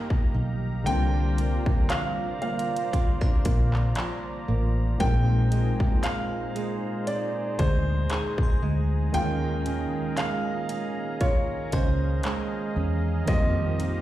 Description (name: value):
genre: contemporary R&B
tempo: 58 BPM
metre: 4/4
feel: swing 54% on 16ths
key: unclear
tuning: A4 = 440 Hz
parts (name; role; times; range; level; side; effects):
- warm concert grand piano; melody; 0.0-14.0 s; C5 to G5; -32 LUFS; right 1 dB; tape echo
- warm analog keys; accompaniment; 0.0-14.0 s; D3 to F4; -33 LUFS; left 2 dB; chorus
- warm analog pad; sustained chords; 0.0-14.0 s; Eb4 to Bb5; -37 LUFS; left 1 dB; chorus, sidechain pumping
- nylon-string guitar; arpeggios; 0.0-14.0 s; Bb2 to G4; -33 LUFS; right 6 dB; tape echo
- trap drum kit; drums; 0.1-14.0 s; handclaps, hi-hat, kick drum; -26 LUFS; equal; none
- vintage muted fingered electric bass; bass; 0.3-14.0 s; A1 to F2; -24 LUFS; equal; none
- glassy synth bell; texture; 8.1-13.8 s; Ab4 to C6; -40 LUFS; left 2 dB; chorus, tape echo
room: digital ambience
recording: played on a big sound system in a bare room, large studio reverb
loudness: -23 LUFS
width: side -14 dB against mid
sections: 0.0-14.0 A section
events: none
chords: 0.0 F9sus4; 0.9 C9sus4; 5.0 Bb9sus4; 9.1 Eb9sus4; 13.3 F9sus4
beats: | 0.86 1.90 2.93 3.97 | 5.00 6.04 7.07 8.11 | 9.14 10.18 11.21 12.24 | 13.28